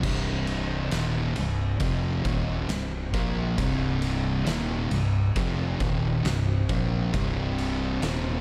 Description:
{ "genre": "stoner and doom metal", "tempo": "68 BPM", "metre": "4/4", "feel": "straight", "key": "C minor", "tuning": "A4 = 442 Hz", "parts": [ { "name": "metallic inharmonic drone", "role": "sustained chords", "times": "1.5-8.4 s", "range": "C3 to C4", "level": "-42 LUFS", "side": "equal", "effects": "none" }, { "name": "fuzz guitar", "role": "riff", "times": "0.0-8.4 s", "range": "C2 to Bb3", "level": "-31 LUFS", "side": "equal", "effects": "distortion" }, { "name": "thick fuzz guitar", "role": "riff", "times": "0.0-8.4 s", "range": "C2 to Bb3", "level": "-33 LUFS", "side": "equal", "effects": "distortion" }, { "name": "fuzz fingered electric bass", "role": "bass", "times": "0.0-8.4 s", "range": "C1 to Bb1", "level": "-34 LUFS", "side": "equal", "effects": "overdrive, tube saturation" }, { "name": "oversized low-tuned drum kit", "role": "drums", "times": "0.0-8.2 s", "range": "crash cymbal, kick drum, ride cymbal, snare drum", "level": "-34 LUFS", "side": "equal", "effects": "none" } ], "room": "little or no reverb", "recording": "dark, warm production", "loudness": "-27 LUFS", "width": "mono", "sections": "0.0-8.4 A section", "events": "none", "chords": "0.0 Cm" }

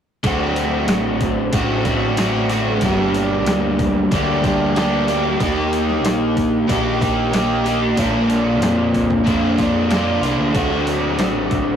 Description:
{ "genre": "rock, shoegaze and dream pop", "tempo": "93 BPM", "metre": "4/4", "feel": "straight", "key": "unclear", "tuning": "A4 = 440 Hz", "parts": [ { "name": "crunchy overdriven guitar", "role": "riff", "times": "0.2-11.8 s", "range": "G2 to G4", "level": "-17 LUFS", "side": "equal", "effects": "none" }, { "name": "growling picked electric bass", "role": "bass", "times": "0.2-11.8 s", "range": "G1 to F2", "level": "-25 LUFS", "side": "equal", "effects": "overdrive" }, { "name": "detuned 8-bit digital drum machine", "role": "drums", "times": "0.2-11.7 s", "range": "hi-hat, kick drum, snare drum", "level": "-23 LUFS", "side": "equal", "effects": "none" } ], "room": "wet studio ambience, RT60 0.5 s", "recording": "rough rehearsal-room recording, warm saturation", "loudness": "-16 LUFS", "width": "side -8 dB against mid", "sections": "0.2-11.8 A section", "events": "none", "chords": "0.2 D5; 2.8 Gm; 5.4 Eb; 8.0 Bb; 10.5 D5" }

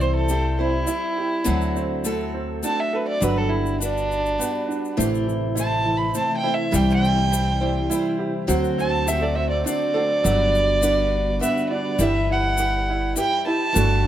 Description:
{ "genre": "acoustic folk duo or small band", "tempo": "102 BPM", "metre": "3/4", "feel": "straight", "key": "G major", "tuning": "A4 = 441 Hz", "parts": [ { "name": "dark fiddle", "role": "melody", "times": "0.0-14.1 s", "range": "D4 to B5", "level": "-23 LUFS", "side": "right 2 dB", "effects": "plate reverb" }, { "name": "picked acoustic archtop guitar", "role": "accompaniment", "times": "0.0-14.1 s", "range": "A2 to C5", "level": "-27 LUFS", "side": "left 1 dB", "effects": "none" }, { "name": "bright upright piano", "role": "arpeggios", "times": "0.0-14.1 s", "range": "E3 to A4", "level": "-28 LUFS", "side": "right 4 dB", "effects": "none" }, { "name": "upright bass", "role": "bass", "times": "0.0-14.1 s", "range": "G1 to D2", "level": "-24 LUFS", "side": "left 1 dB", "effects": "none" }, { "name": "tube shaker", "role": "percussion", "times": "0.0-13.9 s", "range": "none", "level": "-31 LUFS", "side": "left 6 dB", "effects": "none" }, { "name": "mellow tonewheel organ", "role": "sustained chords", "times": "5.0-12.0 s", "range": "C3 to F#4", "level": "-30 LUFS", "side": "left 1 dB", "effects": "slow rotary speaker, chorus vibrato" } ], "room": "light reverb", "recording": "none", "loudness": "-19 LUFS", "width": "side -11 dB against mid", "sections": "0.0-12.0 A section; 12.0-14.1 B section", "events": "fiddle solo 0.0-12.0", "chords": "0.0 C; 1.5 D7; 3.2 Gmaj7; 5.0 Am; 6.7 C; 8.5 D7; 10.3 Gmaj7; 12.0 Em/G" }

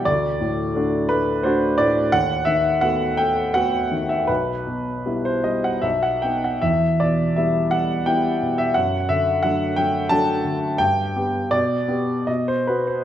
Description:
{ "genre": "classical, romantic character piece for solo piano", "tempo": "73-90 BPM", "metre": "3/4", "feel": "rubato", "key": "E minor", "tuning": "A4 = 440 Hz", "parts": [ { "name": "clear grand piano", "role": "solo", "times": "0.0-13.0 s", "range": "B1 to A5", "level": "-18 LUFS", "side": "equal", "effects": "none" } ], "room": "wet recital hall reverb, RT60 1.5 s", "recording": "none", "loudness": "-18 LUFS", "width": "side -11 dB against mid", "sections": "0.0-13.0 A section", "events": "none", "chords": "0.1 D; 2.1 B7/D#; 4.3 Em/B; 5.8 B; 6.6 Em; 8.7 D/F#; 10.8 G; 11.5 Bm; 12.3 B5" }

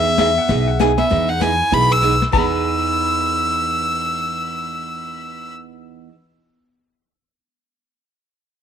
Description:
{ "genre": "country, western swing", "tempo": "196 BPM", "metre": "4/4", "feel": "swing 61% on 8ths", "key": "E major", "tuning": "A4 = 441 Hz", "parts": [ { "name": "clear fiddle", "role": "melody", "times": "0.0-5.5 s", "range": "E5 to E6", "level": "-19 LUFS", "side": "left 1 dB", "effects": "none" }, { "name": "vintage hollow-body jazz guitar", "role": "second line", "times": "0.0-6.1 s", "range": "B3 to B4", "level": "-29 LUFS", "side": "right 13 dB", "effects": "none" }, { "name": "picked steel-string acoustic guitar", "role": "accompaniment", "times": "0.0-6.2 s", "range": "E3 to G#4", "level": "-24 LUFS", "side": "right 10 dB", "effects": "none" }, { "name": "upright bass", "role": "bass", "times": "0.0-6.1 s", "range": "B1 to E2", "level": "-24 LUFS", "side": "left 1 dB", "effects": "none" }, { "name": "clean lap steel guitar", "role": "second line", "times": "0.2-5.5 s", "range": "E5 to B5", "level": "-24 LUFS", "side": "left 13 dB", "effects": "none" }, { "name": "vintage brush drum kit", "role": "drums", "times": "0.2-2.6 s", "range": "brushed snare drum, china cymbal, hi-hat, kick drum, snare drum", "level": "-23 LUFS", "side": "left 5 dB", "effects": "none" } ], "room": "light reverb, studio ambience", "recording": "1960s-style stereo with parts hard left and right", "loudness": "-15 LUFS", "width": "side -8 dB against mid", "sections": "0.0-1.1 A section; 1.1-2.3 B section; 2.3-4.8 C section", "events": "drum fill 2.0-2.3", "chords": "0.0 Emaj7" }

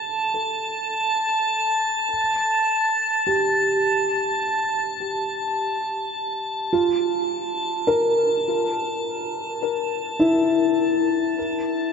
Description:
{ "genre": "ambient", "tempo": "52 BPM", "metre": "4/4", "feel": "straight", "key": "unclear", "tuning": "A4 = 440 Hz", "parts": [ { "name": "felt-muted upright piano", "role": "arpeggios", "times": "0.0-11.9 s", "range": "E4 to Bb4", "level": "-22 LUFS", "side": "left 1 dB", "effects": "ping-pong delay" }, { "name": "drifting glass-harmonics texture", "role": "texture", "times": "0.0-11.9 s", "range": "A5", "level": "-23 LUFS", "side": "equal", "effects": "chorus, built-in reverb" } ], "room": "wet huge ambient reverb, RT60 6.9 s", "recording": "dreamy mix soaked in reverb, nothing above 7.7 kHz", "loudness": "-20 LUFS", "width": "side -6 dB against mid", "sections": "0.0-11.9 A section", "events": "none", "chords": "0.0 N.C.; 2.1 Gsus2; 6.7 Bb5; 11.4 A5" }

